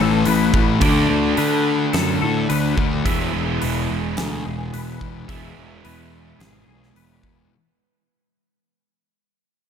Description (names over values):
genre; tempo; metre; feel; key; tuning
rock, shoegaze and dream pop; 108 BPM; 4/4; straight; E mixolydian; A4 = 440 Hz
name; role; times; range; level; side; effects
twangy electric guitar; arpeggios; 0.0-8.0 s; G#4 to E5; -28 LUFS; left 9 dB; ensemble chorus, slapback echo
crunchy overdriven guitar; riff; 0.0-7.5 s; A2 to A4; -24 LUFS; right 11 dB; reverse reverb
thick fuzz guitar; riff; 0.0-7.5 s; E2 to D4; -23 LUFS; left 12 dB; distortion, wide subtle chorus
fuzz picked electric bass; bass; 0.0-7.5 s; E1 to D3; -23 LUFS; left 1 dB; overdrive
huge arena drum kit; drums; 0.3-7.4 s; hi-hat, kick drum, snare drum; -24 LUFS; equal; none
room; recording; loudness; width
light reverb, studio reverb; none; -17 LUFS; side -8 dB against mid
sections
0.0-7.5 A section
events
fade-out 0.0-7.5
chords
0.0 Aadd9; 0.8 D6; 3.1 E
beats
0.27 | 0.82 1.38 1.94 2.50 | 3.06 3.61 4.17 4.73 | 5.29 5.84 6.40 6.96